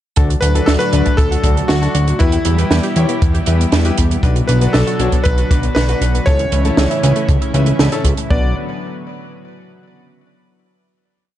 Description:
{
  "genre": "synthwave",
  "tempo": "118 BPM",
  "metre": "4/4",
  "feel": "straight",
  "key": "B minor",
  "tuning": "A4 = 438 Hz",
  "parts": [
    { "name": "lush unison pad", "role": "sustained chords", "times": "0.2-8.5 s", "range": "A2 to B4", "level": "-22 LUFS", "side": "equal", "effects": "chorus, sidechain pumping" },
    { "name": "analog pluck", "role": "arpeggios", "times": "0.2-8.5 s", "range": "A3 to B4", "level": "-27 LUFS", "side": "right 2 dB", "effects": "chorus, digital delay" },
    { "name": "bright baby grand piano", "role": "stabs", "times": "0.2-8.5 s", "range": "C#4 to C#5", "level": "-26 LUFS", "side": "left 4 dB", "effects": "digital delay" },
    { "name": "fat analog bass", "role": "bass", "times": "0.2-8.5 s", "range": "B1 to E2", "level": "-15 LUFS", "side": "equal", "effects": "none" },
    { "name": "compact cocktail drum kit", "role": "drums", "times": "0.2-8.3 s", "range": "hi-hat, snare drum", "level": "-20 LUFS", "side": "right 3 dB", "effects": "small room reverb" },
    { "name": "kick drum", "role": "drums", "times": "0.2-8.4 s", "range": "none", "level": "-16 LUFS", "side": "equal", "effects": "small room reverb" },
    { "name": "bright electric grand piano", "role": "melody", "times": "0.4-8.5 s", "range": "E4 to D5", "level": "-21 LUFS", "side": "equal", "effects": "digital delay" }
  ],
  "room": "light reverb, small room ambience",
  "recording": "dark, warm production, nothing above 10.3 kHz",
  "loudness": "-12 LUFS",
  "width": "side -12 dB against mid",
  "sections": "0.2-8.3 verse; 8.3-10.3 final chord",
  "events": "none",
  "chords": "0.2 D; 2.2 Em; 4.2 Bm; 6.3 A/C#; 8.3 Bm"
}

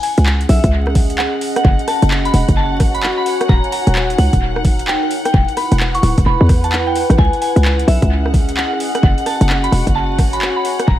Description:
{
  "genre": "UK garage, two-step garage",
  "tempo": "130 BPM",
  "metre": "4/4",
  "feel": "swing 64% on 16ths",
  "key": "unclear",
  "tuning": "A4 = 440 Hz",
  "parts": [
    { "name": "soft synth bell", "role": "melody", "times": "0.0-11.0 s", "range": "E5 to C#6", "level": "-21 LUFS", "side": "equal", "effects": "chorus, phaser, tape echo" },
    { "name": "muted studio violin section", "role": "sustained chords", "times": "0.0-11.0 s", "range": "F#5", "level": "-26 LUFS", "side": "left 1 dB", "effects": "sidechain pumping" },
    { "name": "garage drum kit", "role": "drums", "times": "0.0-10.9 s", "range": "handclaps, hi-hat, rim click", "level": "-23 LUFS", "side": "right 1 dB", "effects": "overdrive, studio reverb, dub echo" },
    { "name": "warbly tape-like pad", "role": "texture", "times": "0.1-11.0 s", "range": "C#4 to G#5", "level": "-22 LUFS", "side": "equal", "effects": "chorus, built-in reverb, sidechain pumping" },
    { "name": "short 808-style bass", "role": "bass", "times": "0.2-11.0 s", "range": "D1 to E2", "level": "-15 LUFS", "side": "equal", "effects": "sidechain pumping" },
    { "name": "electronic kick drum", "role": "drums", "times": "0.6-11.0 s", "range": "none", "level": "-15 LUFS", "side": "equal", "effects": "overdrive, studio reverb" }
  ],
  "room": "little or no reverb",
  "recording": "echo-heavy mix, vinyl crackle",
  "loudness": "-12 LUFS",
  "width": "side -13 dB against mid",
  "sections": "0.0-11.0 A section",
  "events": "none",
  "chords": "0.0 C#5; 1.6 F#5; 3.5 D#m7; 5.1 E5; 7.2 C#m7; 9.0 F#5"
}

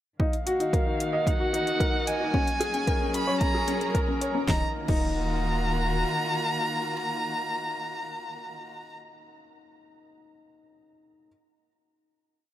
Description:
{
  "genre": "piano and strings electronica",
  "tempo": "112 BPM",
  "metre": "4/4",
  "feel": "straight",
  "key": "Eb minor",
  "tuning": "A4 = 440 Hz",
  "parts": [
    { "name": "rich violin", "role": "melody", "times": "0.2-9.0 s", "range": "F5 to Cb6", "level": "-30 LUFS", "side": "equal", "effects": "low-pass filter" },
    { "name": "dark chamber string section", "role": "sustained chords", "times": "0.2-8.8 s", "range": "Eb3 to Eb5", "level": "-33 LUFS", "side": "equal", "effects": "sidechain pumping" },
    { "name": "warm upright piano", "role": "riff", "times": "0.2-11.3 s", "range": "Db4 to Eb5", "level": "-30 LUFS", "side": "left 1 dB", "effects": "none" },
    { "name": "warm sub bass", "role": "bass", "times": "0.2-6.1 s", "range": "Eb1 to Db2", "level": "-31 LUFS", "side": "right 1 dB", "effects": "sidechain pumping, high-pass filter" },
    { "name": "electronic kick drum", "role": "drums", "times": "0.2-5.0 s", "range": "none", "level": "-27 LUFS", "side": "right 1 dB", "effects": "overdrive" },
    { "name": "deep house drum kit", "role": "drums", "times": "0.3-5.0 s", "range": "crash cymbal, hi-hat, snare drum", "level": "-35 LUFS", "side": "left 1 dB", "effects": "overdrive" }
  ],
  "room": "light reverb, small room ambience",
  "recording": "none",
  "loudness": "-24 LUFS",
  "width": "side -12 dB against mid",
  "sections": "0.2-4.5 build; 4.5-8.8 final chord",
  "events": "build-up 0.2-4.5",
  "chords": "0.2 Ebmadd9; 2.3 Gbadd9/Eb; 4.5 Ebmadd9"
}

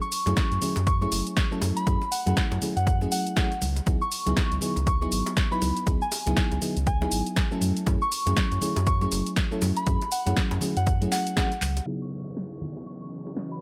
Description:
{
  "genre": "deep house",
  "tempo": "120 BPM",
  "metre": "4/4",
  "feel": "swing 60% on 16ths",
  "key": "C# minor",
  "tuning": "A4 = 440 Hz",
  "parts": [
    { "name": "soft synth bell", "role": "melody", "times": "0.0-13.6 s", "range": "F#5 to C#6", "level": "-33 LUFS", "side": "equal", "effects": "chorus, tape echo" },
    { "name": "punchy analog drum machine", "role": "drums", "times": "0.0-13.6 s", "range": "cabasa, handclaps, hi-hat, snare drum", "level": "-33 LUFS", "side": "equal", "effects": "overdrive" },
    { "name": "mellow FM electric piano", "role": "stabs", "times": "0.3-13.6 s", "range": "C#3 to B4", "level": "-33 LUFS", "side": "equal", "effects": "chorus, low-pass filter" },
    { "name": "round analog bass", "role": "bass", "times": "0.3-11.8 s", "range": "F#1 to F#2", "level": "-29 LUFS", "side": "equal", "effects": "sidechain pumping" },
    { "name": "bongos and congas", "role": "percussion", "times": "0.3-13.3 s", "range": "none", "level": "-38 LUFS", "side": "equal", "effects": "none" },
    { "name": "electronic kick drum", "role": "drums", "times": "0.4-11.5 s", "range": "none", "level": "-28 LUFS", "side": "equal", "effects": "overdrive" },
    { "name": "soft string machine", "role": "sustained chords", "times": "11.9-13.6 s", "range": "E3 to D#5", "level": "-43 LUFS", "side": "equal", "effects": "ensemble chorus, sidechain pumping" },
    { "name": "downlifter", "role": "sound effects", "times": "11.9-13.6 s", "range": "none", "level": "-48 LUFS", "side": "equal", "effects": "none" }
  ],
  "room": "light reverb",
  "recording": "low-pass filter",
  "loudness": "-26 LUFS",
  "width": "mono",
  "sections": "0.0-11.9 A section; 11.9-13.6 B section",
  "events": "drum fill 11.6; filter sweep on FM electric piano 11.9-13.6; filter sweep on string machine 11.9-13.6; filter sweep 11.9-13.6",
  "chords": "0.0 F#m9; 3.9 C#m11; 7.6 F#m9; 11.9 C#m11"
}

